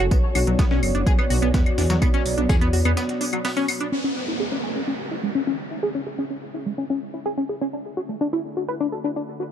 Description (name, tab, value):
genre	melodic techno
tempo	126 BPM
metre	4/4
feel	straight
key	C# phrygian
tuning	A4 = 440 Hz
part	dark analog pad	sustained chords	0.0-9.5 s	B3 to F#5	-30 LUFS	left 1 dB	chorus, sidechain pumping
part	tight sequenced synth	arpeggios	0.0-9.4 s	F#3 to B4	-25 LUFS	left 1 dB	chorus, cassette tape, sidechain pumping, dub echo
part	dark detuned saw bass	bass	0.0-2.9 s	F#1 to E2	-23 LUFS	equal	sidechain pumping
part	electronic hi-hat and claves	drums	0.0-3.9 s	none	-30 LUFS	left 2 dB	none
part	breakbeat sampler-style drum kit	drums	0.1-3.8 s	hi-hat, snare drum, tambourine	-35 LUFS	equal	sidechain pumping on perc, high-pass filter on perc, high-pass filter on snare, sidechain pumping on hats, high-pass filter on hats
part	electronic kick drum	drums	0.1-2.6 s	none	-20 LUFS	equal	none
part	downlifter	sound effects	3.9-7.7 s	none	-32 LUFS	right 2 dB	none
room	light reverb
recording	dark, warm production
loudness	-21 LUFS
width	side -9 dB against mid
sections	0.0-3.9 A section; 3.9-9.5 B section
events	break 3.0-3.9; filter sweep on synth arpeggio sound 3.9-9.5; filter sweep on analog synth pad 3.9-9.5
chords	0.1 Bm; 3.9 C#m; 7.7 D